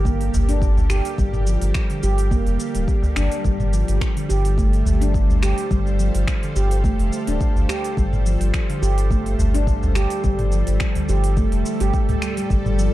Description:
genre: organic downtempo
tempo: 106 BPM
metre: 4/4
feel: swing 54% on 16ths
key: unclear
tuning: A4 = 440 Hz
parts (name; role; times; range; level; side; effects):
- bowed-like drone; sustained chords; 0.0-12.9 s; G3 to F5; -30 LUFS; left 1 dB; built-in reverb, sidechain pumping
- warm sub bass; bass; 0.0-12.9 s; D1 to G1; -20 LUFS; equal; none
- handpan; arpeggios; 0.1-12.9 s; D3 to G4; -25 LUFS; right 1 dB; vintage 12-bit sampler grit, tape echo
- electronic kick drum; drums; 0.1-12.6 s; none; -22 LUFS; equal; none
- organic electronic drum kit; drums; 0.1-12.9 s; cabasa, finger snaps, hi-hat, toms; -30 LUFS; equal; none
- udu; percussion; 0.3-12.2 s; none; -24 LUFS; equal; none
room: little or no reverb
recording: dark, warm production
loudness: -17 LUFS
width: side -15 dB against mid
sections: 0.0-12.5 A section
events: none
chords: 0.0 Gm7; 3.4 F

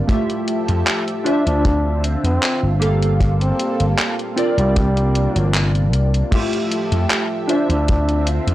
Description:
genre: vaporwave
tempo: 77 BPM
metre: 4/4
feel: straight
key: unclear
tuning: A4 = 440 Hz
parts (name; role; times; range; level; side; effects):
- warbly lo-fi synth keys; accompaniment; 0.0-8.5 s; A3 to F5; -22 LUFS; equal; wide subtle chorus, analog delay
- lush unison pad; sustained chords; 0.0-8.5 s; C3 to E5; -28 LUFS; equal; chorus, phaser
- gated 80s digital drum machine; drums; 0.1-8.5 s; crash cymbal, handclaps, hi-hat; -22 LUFS; equal; gated reverb, studio reverb
- kick drum; drums; 0.1-8.1 s; none; -18 LUFS; equal; studio reverb
- vintage slap bass; bass; 0.7-8.5 s; G1 to F2; -17 LUFS; equal; none
- breathy flugelhorn; melody; 1.3-8.3 s; G3 to D4; -24 LUFS; equal; tape echo
room: small room ambience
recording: dry, gritty hardware recording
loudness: -16 LUFS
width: side -14 dB against mid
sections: 0.0-6.3 A section; 6.3-8.5 B section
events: none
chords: 0.1 Fmaj9; 1.3 Dm9; 2.8 Gm9; 4.4 C9sus4; 6.3 Fmaj9; 7.5 Dm9

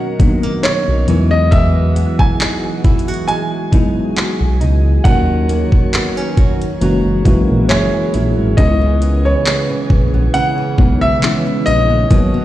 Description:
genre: contemporary R&B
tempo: 68 BPM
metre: 4/4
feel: swing 54% on 16ths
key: C# dorian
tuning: A4 = 441 Hz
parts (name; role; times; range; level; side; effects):
- warm baby grand piano; melody; 0.0-12.4 s; C#5 to G#5; -20 LUFS; equal; digital delay
- mellow tine electric piano; accompaniment; 0.0-12.4 s; D#3 to G#5; -19 LUFS; left 2 dB; medium stereo tremolo
- glassy FM pad; sustained chords; 0.0-12.4 s; C#3 to G#5; -25 LUFS; right 1 dB; ensemble chorus, built-in reverb
- nylon-string guitar; arpeggios; 0.0-12.4 s; B2 to G#4; -23 LUFS; right 4 dB; none
- smooth R&B drum kit; drums; 0.2-12.3 s; handclaps, hi-hat, kick drum; -14 LUFS; equal; vintage 12-bit sampler grit
- smooth synth bass; bass; 0.9-12.3 s; F#1 to E2; -15 LUFS; equal; none
room: little or no reverb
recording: played on a big sound system in a bare room, stone room reverb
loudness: -12 LUFS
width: side -14 dB against mid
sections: 0.0-8.6 A section; 8.6-12.4 B section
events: tine electric piano fill 7.3-8.6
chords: 0.0 Bmaj7; 1.1 Emaj9; 5.0 D#m7; 6.8 F#9; 8.6 C#m9

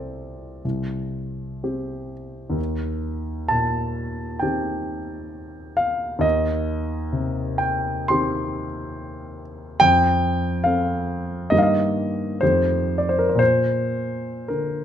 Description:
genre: classical, romantic nocturne for solo piano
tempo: 67 BPM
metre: 4/4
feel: uneven beats, rubato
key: unclear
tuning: A4 = 441 Hz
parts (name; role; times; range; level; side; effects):
- warm concert grand piano; solo; 0.0-14.8 s; C2 to C6; -21 LUFS; equal; none
room: light reverb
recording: close, detailed microphones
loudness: -20 LUFS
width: side -9 dB against mid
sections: 0.0-14.8 A section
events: none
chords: 0.0 Amadd11/C; 0.6 C5; 2.6 Eb6; 6.2 Cm/Eb; 9.8 F; 11.5 Eb/G; 12.4 F9; 13.4 Bb

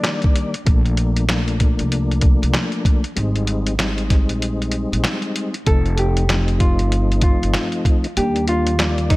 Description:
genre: hip hop, boom-bap hip-hop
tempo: 96 BPM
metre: 4/4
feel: swing 61% on 16ths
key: unclear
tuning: A4 = 440 Hz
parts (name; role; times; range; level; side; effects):
- nylon-string guitar; melody; 0.0-0.2, 5.7-9.2 s; D4 to A4; -24 LUFS; equal; high-pass filter, low-pass filter, tape echo
- mellow tonewheel organ; accompaniment; 0.0-9.2 s; Eb3 to D5; -23 LUFS; left 2 dB; chorus vibrato, cassette tape, high-pass filter, low-pass filter
- lo-fi sampler-style drum kit; drums; 0.0-9.2 s; hi-hat, kick drum, snare drum; -18 LUFS; equal; none
- upright bass; bass; 0.7-9.2 s; F1 to Eb2; -20 LUFS; equal; none
room: small room reverb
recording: none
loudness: -16 LUFS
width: side -20 dB against mid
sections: 0.0-5.7 A section; 5.7-9.2 A section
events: break 0.0-0.7, 4.4-5.7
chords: 0.0 Ebmaj7; 0.7 Bbmaj7; 3.2 Abmaj7; 5.7 F7; 8.2 Ebmaj7

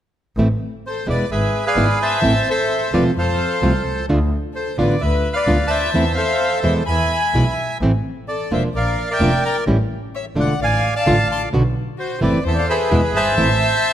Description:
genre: tango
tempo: 129 BPM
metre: 4/4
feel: rubato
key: A harmonic minor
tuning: A4 = 440 Hz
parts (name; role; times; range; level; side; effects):
- nylon-string guitar; accompaniment; 0.4-13.5 s; B2 to F#4; -22 LUFS; right 1 dB; none
- clear double bass; bass; 0.4-13.6 s; E1 to F2; -21 LUFS; equal; none
- bandoneon; melody; 0.9-13.9 s; G#4 to C6; -20 LUFS; right 2 dB; none
- warm violin; second line; 0.9-13.9 s; F#4 to A5; -25 LUFS; left 8 dB; none
room: light reverb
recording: close, detailed microphones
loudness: -16 LUFS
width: side -10 dB against mid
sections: 0.4-13.9 A section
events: none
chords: 0.4 Am; 1.3 E/G#; 2.2 Am; 3.2 F; 4.1 Dm; 5.0 Bdim/D; 5.9 Am/E; 6.9 E; 7.8 A5; 8.7 Bb; 9.7 A5; 10.6 Dm/A; 11.5 Bm; 12.4 Am/E; 12.9 E; 13.4 Am

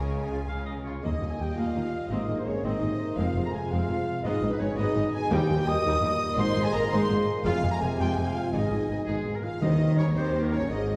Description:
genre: cinematic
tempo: 112 BPM (dotted quarters)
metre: 6/8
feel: straight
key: Eb mixolydian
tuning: A4 = 440 Hz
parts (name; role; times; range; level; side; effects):
- warm symphonic violin section; melody; 0.0-11.0 s; Ab4 to Ab5; -43 LUFS; equal; none
- concert flute; second line; 0.0-11.0 s; Ab4 to Eb6; -40 LUFS; equal; none
- warm symphonic violin section; second line; 0.0-11.0 s; Ab4 to Eb6; -43 LUFS; equal; none
- warm symphonic viola section; accompaniment; 0.0-11.0 s; G3 to C5; -36 LUFS; equal; none
- mellow French horn section; sustained chords; 0.0-11.0 s; Ab3 to Eb5; -35 LUFS; equal; none
- concert harp; arpeggios; 0.0-11.0 s; F2 to Eb6; -39 LUFS; equal; none
- rich symphonic cello section; bass; 0.0-11.0 s; Eb2 to Eb3; -34 LUFS; equal; none
- warm symphonic double bass section; bass; 0.0-11.0 s; F1 to Eb2; -35 LUFS; equal; none
- mellow trombone section; sustained chords; 0.3-10.6 s; Bb2 to Bb3; -40 LUFS; equal; none
- warm trumpet section; stabs; 0.3-10.6 s; F4 to Eb6; -37 LUFS; equal; none
- clear oboe; second line; 0.5-1.0, 9.1-11.0 s; Ab4 to F5; -43 LUFS; equal; none
- timpani; percussion; 5.3-5.8, 9.6-10.1 s; Eb3; -32 LUFS; equal; none
room: wet scoring stage reverb, RT60 1.9 s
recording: heard from further back in the room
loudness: -27 LUFS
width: mono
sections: 0.0-1.0 A section; 1.0-9.6 B section; 9.6-11.0 C section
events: none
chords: 0.0 Db; 1.0 Eb; 2.1 Abadd9; 3.2 Fm; 4.2 Abm; 5.3 Eb; 6.4 Abadd9; 7.5 Fm; 8.5 Abm; 9.6 Eb

